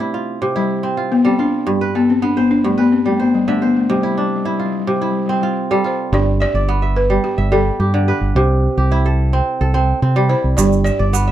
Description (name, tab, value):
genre	west african traditional, West African string and xylophone music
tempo	108 BPM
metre	4/4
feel	straight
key	G mixolydian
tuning	A4 = 438 Hz
part	balafon	melody	0.0-11.3 s	G3 to D5	-18 LUFS	left 3 dB	none
part	kora	arpeggios	0.0-11.3 s	G2 to E5	-18 LUFS	right 2 dB	none
part	fingered electric bass	bass	6.1-11.3 s	G1 to C3	-16 LUFS	right 1 dB	none
part	egg shaker	percussion	10.6-11.3 s	none	-25 LUFS	right 18 dB	none
room	small room ambience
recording	dry, close 1970s-style studio recording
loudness	-14 LUFS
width	side -12 dB against mid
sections	0.0-6.1 A section; 6.1-11.3 B section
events	none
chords	0.0 C; 1.7 G; 3.9 C; 6.1 G; 8.4 C; 10.6 G